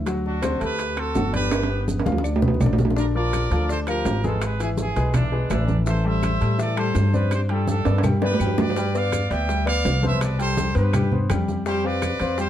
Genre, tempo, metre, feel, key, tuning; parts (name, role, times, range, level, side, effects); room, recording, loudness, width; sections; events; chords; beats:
latin, salsa; 166 BPM; 4/4; straight; A4 = 443 Hz
upright bass; bass; 0.0-12.5 s; G1 to A2; -23 LUFS; equal
clear baby grand piano; accompaniment; 0.1-12.5 s; B2 to G5; -26 LUFS; left 2 dB
bongos; percussion; 0.1-12.5 s; -32 LUFS; left 4 dB
congas; percussion; 0.1-12.5 s; -27 LUFS; equal
maracas; percussion; 0.1-12.5 s; -43 LUFS; right 6 dB
timbales; percussion; 0.1-12.4 s; -28 LUFS; right 5 dB
bright trumpet section; melody; 0.3-12.5 s; D4 to G5; -27 LUFS; equal
claves; percussion; 0.4-12.2 s; -40 LUFS; left 5 dB
warm saxophone section; second line; 5.2-5.8 s; D4; -32 LUFS; right 3 dB
light reverb; dark, warm production; -20 LUFS; side -11 dB against mid
0.0-3.0 A section; 3.0-12.5 B section
drum fill 1.5-3.0, 7.3-8.8
0.1 D7; 1.5 G7; 3.0 Bb; 4.4 E7/G#; 5.9 Am7; 7.3 Gsus4; 8.0 G; 8.8 G7; 10.2 C5; 11.7 Fsus2
| 0.07 0.43 0.79 1.16 | 1.52 1.88 2.24 2.61 | 2.97 3.33 3.69 4.06 | 4.42 4.78 5.14 5.51 | 5.87 6.23 6.59 6.96 | 7.32 7.68 8.04 8.41 | 8.77 9.13 9.49 9.86 | 10.22 10.58 10.94 11.30 | 11.66 12.03 12.39